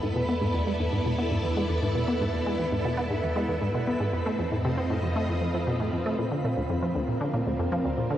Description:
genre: ambient, sequencer-driven space music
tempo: 117 BPM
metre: 4/4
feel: straight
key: unclear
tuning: A4 = 440 Hz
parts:
  - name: string machine, full ensemble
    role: sustained chords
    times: 0.0-8.2 s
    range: B3 to Eb5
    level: -30 LUFS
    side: equal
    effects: phaser, ensemble chorus, shimmer reverb
  - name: resonant blip pluck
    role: riff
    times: 0.0-8.2 s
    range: D2 to C4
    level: -28 LUFS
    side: equal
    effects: chorus, tape echo
  - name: warm sub bass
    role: bass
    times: 0.0-8.2 s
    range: Bb1 to F2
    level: -34 LUFS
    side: equal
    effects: none
  - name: twinkling granular texture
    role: texture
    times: 0.0-6.2 s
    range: B4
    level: -37 LUFS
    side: right 2 dB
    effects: built-in reverb, shimmer reverb
room: wet huge ambient reverb, RT60 7.4 s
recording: worn, warbling old tape, cassette tape, warbly pitch drift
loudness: -25 LUFS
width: side -11 dB against mid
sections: 0.0-6.2 A section; 6.2-8.2 B section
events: filter sweep on synth arpeggio sound 0.0-6.2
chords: 0.0 E7sus4; 4.1 F7; 6.2 Bbadd9

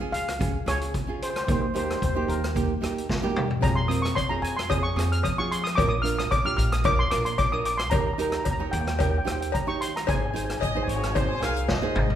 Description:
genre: calypso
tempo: 112 BPM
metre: 4/4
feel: swing 53% on 16ths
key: unclear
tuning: A4 = 440 Hz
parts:
  - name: steel pan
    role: melody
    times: 0.0-11.6 s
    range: Bb4 to F6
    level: -28 LUFS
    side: equal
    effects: none
  - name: nylon-string guitar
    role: accompaniment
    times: 0.0-12.1 s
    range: Bb3 to Db5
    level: -30 LUFS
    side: right 4 dB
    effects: none
  - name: upright bass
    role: bass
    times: 0.0-12.2 s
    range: Ab1 to F3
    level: -29 LUFS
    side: equal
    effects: none
  - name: street-band drum kit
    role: drums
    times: 0.1-12.2 s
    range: hi-hat, kick drum, rim click, snare drum, toms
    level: -29 LUFS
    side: equal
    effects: none
  - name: cowbell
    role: percussion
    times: 3.6-11.8 s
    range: none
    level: -33 LUFS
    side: left 8 dB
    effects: none
  - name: bright horn section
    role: second line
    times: 10.6-12.2 s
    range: C5 to F5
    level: -30 LUFS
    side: left 1 dB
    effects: none
room: moderate concert hall reverb, RT60 1.8 s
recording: minimal, uncompressed stereo recording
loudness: -23 LUFS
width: side -10 dB against mid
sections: 0.0-12.2 A section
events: drum fill 3.1-3.6, 11.7-12.2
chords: 0.0 Db; 1.5 Eb; 3.6 Fm; 5.8 Bb; 7.9 Eb; 10.1 Ab

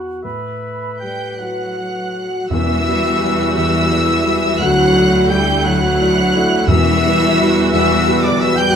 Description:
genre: cinematic, emotional film score for orchestra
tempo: 52-59 BPM (dotted quarters)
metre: 6/8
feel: rubato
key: E minor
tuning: A4 = 440 Hz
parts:
  - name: clear clarinet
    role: second line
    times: 0.0-2.2 s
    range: F#4 to B4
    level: -28 LUFS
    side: left 1 dB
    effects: none
  - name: warm oboe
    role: second line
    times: 0.0-8.8 s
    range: D5 to G5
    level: -24 LUFS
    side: left 2 dB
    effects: none
  - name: dark baby grand piano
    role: accompaniment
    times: 0.0-8.8 s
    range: E1 to D5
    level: -21 LUFS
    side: left 2 dB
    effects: none
  - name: flute section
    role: second line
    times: 0.2-8.7 s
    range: D5 to B5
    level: -25 LUFS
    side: right 2 dB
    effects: none
  - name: warm symphonic violin section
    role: melody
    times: 1.0-8.8 s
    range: D6 to G6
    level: -22 LUFS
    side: right 1 dB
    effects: none
  - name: rich symphonic violin section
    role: second line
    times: 1.0-8.7 s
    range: D5 to G5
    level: -26 LUFS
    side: right 2 dB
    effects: none
  - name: mellow French horn section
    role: sustained chords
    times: 1.0-8.8 s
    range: D4 to G4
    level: -20 LUFS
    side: left 2 dB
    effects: none
  - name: rich studio cello section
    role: bass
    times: 1.0-8.7 s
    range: D3 to G3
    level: -22 LUFS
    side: right 1 dB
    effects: none
  - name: clear symphonic viola section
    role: accompaniment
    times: 2.5-8.8 s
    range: G3 to F#4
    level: -22 LUFS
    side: right 1 dB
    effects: none
  - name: rich symphonic double bass section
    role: bass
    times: 2.5-8.8 s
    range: D2 to E2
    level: -22 LUFS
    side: right 2 dB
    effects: none
  - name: timpani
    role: percussion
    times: 2.5-7.7 s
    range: E2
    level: -20 LUFS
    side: equal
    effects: none
room: wet stone room reverb, RT60 0.9 s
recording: none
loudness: -13 LUFS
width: side -7 dB against mid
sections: 0.0-2.5 A section; 2.5-8.8 B section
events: none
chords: 0.2 Asus2; 2.5 Emadd9; 4.6 Dadd9; 6.7 Emadd9

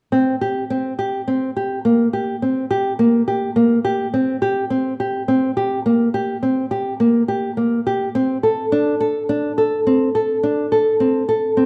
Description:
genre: contemporary instrumental, contemporary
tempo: 105 BPM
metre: 7/4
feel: straight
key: unclear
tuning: A4 = 440 Hz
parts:
  - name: nylon-string guitar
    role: solo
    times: 0.1-11.7 s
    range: Bb3 to A4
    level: -19 LUFS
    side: equal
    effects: none
room: moderate recital hall reverb, RT60 1.4 s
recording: dark, warm production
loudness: -19 LUFS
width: mono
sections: 0.1-11.7 A section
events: none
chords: none

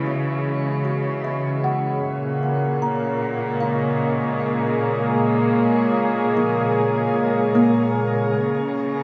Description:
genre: ambient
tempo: 76 BPM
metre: 4/4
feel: straight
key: unclear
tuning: A4 = 443 Hz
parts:
  - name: warm analog pad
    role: sustained chords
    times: 0.0-9.0 s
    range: A#2 to B5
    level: -23 LUFS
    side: equal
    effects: chorus
  - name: kalimba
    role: arpeggios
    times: 0.0-9.0 s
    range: E3 to A#5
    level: -29 LUFS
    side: equal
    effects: tape echo
  - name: clear studio cello section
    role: bass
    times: 0.0-9.0 s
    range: A#2 to C#3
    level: -31 LUFS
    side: equal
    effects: none
  - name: organ-like drone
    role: drone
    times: 0.0-8.4 s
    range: C#3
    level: -30 LUFS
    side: equal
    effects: ensemble chorus, built-in reverb
room: wet shimmer reverb, RT60 7.3 s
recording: none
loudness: -21 LUFS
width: mono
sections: 0.0-8.3 A section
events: fade-in on analog synth pad 0.0-8.3; fade-in on kalimba 0.0-8.3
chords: 0.0 C#m7; 2.0 A#m7; 8.3 C#5

